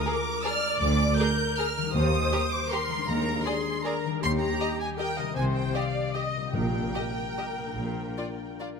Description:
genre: classical, orchestral ballroom waltz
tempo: 139-169 BPM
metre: 3/4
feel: rubato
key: Eb major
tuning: A4 = 440 Hz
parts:
  - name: warm studio violin section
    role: melody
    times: 0.0-8.5 s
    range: Eb5 to G6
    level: -31 LUFS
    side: equal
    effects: none
  - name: warm studio viola section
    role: accompaniment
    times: 0.0-8.8 s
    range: G4 to Eb5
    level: -32 LUFS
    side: left 3 dB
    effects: none
  - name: concert harp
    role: arpeggios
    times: 0.0-8.8 s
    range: Bb2 to Bb4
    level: -35 LUFS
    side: left 11 dB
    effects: none
  - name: warm studio violin section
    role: second line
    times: 0.1-8.7 s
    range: F4 to Eb5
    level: -35 LUFS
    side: equal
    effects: none
  - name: rich studio double bass section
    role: bass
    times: 0.8-8.1 s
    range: Bb1 to Eb2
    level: -32 LUFS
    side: right 3 dB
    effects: none
  - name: warm studio cello section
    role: bass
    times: 0.8-8.1 s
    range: D2 to C3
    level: -32 LUFS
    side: right 2 dB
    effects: none
  - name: timpani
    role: percussion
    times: 1.9-2.5, 6.5-7.1 s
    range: Bb2 to Eb3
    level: -34 LUFS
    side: left 1 dB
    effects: none
room: moderate concert hall reverb, RT60 1.8 s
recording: none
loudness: -25 LUFS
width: side -5 dB against mid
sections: 0.0-8.8 A section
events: none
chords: 0.0 Bb7/D; 1.9 Eb; 3.1 Bb7/Eb; 4.2 Eb; 5.4 Cm; 6.5 Eb/Bb; 7.8 Bb

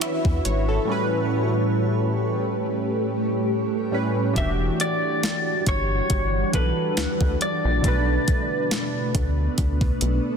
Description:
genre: contemporary R&B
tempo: 69 BPM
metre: 4/4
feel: swing 54% on 16ths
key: E dorian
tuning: A4 = 439 Hz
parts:
  - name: warm analog keys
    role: accompaniment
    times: 0.0-10.4 s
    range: A2 to E5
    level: -25 LUFS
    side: right 1 dB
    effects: chorus, phaser
  - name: granular cloud pad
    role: sustained chords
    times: 0.0-10.4 s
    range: E3 to F#5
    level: -27 LUFS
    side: equal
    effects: built-in reverb, sidechain pumping
  - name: crisp 8-bit digital drum machine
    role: drums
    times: 0.0-10.2 s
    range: finger snaps, hi-hat, kick drum, snare drum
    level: -24 LUFS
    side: equal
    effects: overdrive
  - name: rubbery square bass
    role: bass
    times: 0.3-10.2 s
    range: E1 to E2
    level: -24 LUFS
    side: equal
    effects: none
  - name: clean electric guitar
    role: melody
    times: 4.4-9.1 s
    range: B4 to E5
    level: -26 LUFS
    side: left 2 dB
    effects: ping-pong delay
room: light reverb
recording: dense, heavily limited modern master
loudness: -20 LUFS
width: side -6 dB against mid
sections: 0.0-4.4 A section; 4.4-10.4 B section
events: drums muted 0.9-4.4; synth keys fill 10.0-10.4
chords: 0.0 Dmaj13; 0.9 A9; 4.4 Em9; 7.8 Bm7

